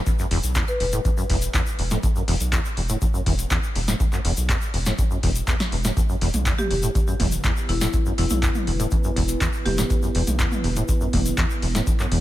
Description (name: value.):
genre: acid house.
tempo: 122 BPM.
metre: 4/4.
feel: straight.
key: E minor.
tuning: A4 = 440 Hz.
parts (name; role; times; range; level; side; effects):
acid bass, saw; riff; 0.1-12.2 s; E2 to A2; -27 LUFS; equal; tube saturation, lush chorus, sidechain pumping.
electro analog drum machine; drums; 0.1-12.2 s; handclaps, hi-hat, snare drum, toms; -27 LUFS; equal; none.
electronic kick drum; drums; 0.1-12.0 s; none; -23 LUFS; equal; overdrive.
tube shaker; percussion; 0.1-12.1 s; none; -34 LUFS; left 4 dB; none.
round analog bass; bass; 0.3-12.2 s; E1 to B1; -25 LUFS; equal; sidechain pumping.
marimba with medium hard mallets; melody; 0.7-0.9, 6.6-10.3 s; E4 to B4; -30 LUFS; left 2 dB; digital delay.
dark analog pad; sustained chords; 6.0-12.2 s; B3 to B4; -31 LUFS; right 2 dB; chorus, sidechain pumping.
room: little or no reverb.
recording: none.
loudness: -20 LUFS.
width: side -14 dB against mid.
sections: 0.0-12.2 A section.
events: filter sweep on acid bass 0.0-12.2.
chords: 0.0 E5.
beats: | 0.07 0.56 1.05 1.54 | 2.03 2.52 3.02 3.51 | 4.00 4.49 4.98 5.48 | 5.97 6.46 6.95 7.44 | 7.93 8.43 8.92 9.41 | 9.90 10.39 10.89 11.38 | 11.87.